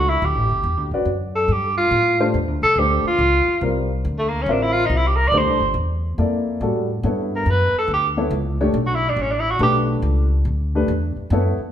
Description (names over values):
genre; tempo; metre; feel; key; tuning
modal jazz; 141 BPM; 3/4; swing 65% on 8ths; unclear; A4 = 439 Hz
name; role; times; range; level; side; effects
warm tenor saxophone; melody; 0.0-9.8 s; A3 to D5; -19 LUFS; right 1 dB; none
dark baby grand piano; accompaniment; 0.0-11.6 s; G3 to E5; -23 LUFS; left 2 dB; none
upright bass; bass; 0.0-11.6 s; G1 to A2; -22 LUFS; equal; none
room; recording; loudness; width
wet large studio reverb, RT60 1.4 s; band playing live in one room; -17 LUFS; side -10 dB against mid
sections
0.0-11.7 A section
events
tenor saxophone solo 0.0-11.7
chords
0.0 A7sus4; 1.5 G13sus4; 6.6 A13sus4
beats
| 0.22 0.65 1.07 | 1.50 1.93 2.35 | 2.78 3.21 3.63 | 4.06 4.49 4.91 | 5.34 5.76 6.19 | 6.62 7.04 7.47 | 7.90 8.32 8.75 | 9.18 9.60 10.03 | 10.46 10.88 11.31